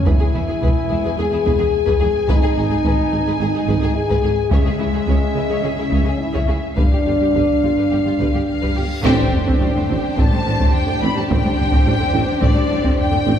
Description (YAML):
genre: cinematic, epic orchestral film score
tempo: 107 BPM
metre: 4/4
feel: straight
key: unclear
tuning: A4 = 440 Hz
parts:
  - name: warm symphonic violin section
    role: melody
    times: 0.0-13.4 s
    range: D5 to B5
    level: -27 LUFS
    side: left 4 dB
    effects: none
  - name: warm French horn section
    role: sustained chords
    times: 0.0-13.4 s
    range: G#3 to G#4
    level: -20 LUFS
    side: left 2 dB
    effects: none
  - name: warm symphonic violin section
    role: second line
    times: 0.1-13.4 s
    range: D#4 to C#5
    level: -29 LUFS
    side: left 3 dB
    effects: none
  - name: warm symphonic viola section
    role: accompaniment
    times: 0.1-13.4 s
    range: D3 to G#4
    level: -26 LUFS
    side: right 1 dB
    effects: none
  - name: mellow tuba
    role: bass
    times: 0.1-13.3 s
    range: E1 to C#2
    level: -26 LUFS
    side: right 3 dB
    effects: none
  - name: rich studio cello section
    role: bass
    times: 0.1-13.3 s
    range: E2 to C#3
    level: -27 LUFS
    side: right 2 dB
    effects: none
  - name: rich symphonic double bass section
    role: bass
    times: 0.1-13.3 s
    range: E1 to C#2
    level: -26 LUFS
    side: right 2 dB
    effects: none
  - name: taiko ensemble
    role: drums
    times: 0.1-13.4 s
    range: none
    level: -20 LUFS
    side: equal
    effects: none
  - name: reverse cymbal and impact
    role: sound effects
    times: 8.6-11.3 s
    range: none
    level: -36 LUFS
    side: equal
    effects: none
  - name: timpani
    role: percussion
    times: 9.0-9.9 s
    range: none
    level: barely audible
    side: none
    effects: none
room: wet concert hall reverb, RT60 2.0 s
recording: heard from further back in the room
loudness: -15 LUFS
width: side -9 dB against mid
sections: 0.0-9.1 A section; 9.1-13.4 B section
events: reverse cymbal 8.6-9.1; band accent 9.1-9.6; impact 9.1-11.3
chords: 0.1 E; 2.3 G#5; 4.5 C#m; 6.8 G7(no3); 9.1 Csus2/A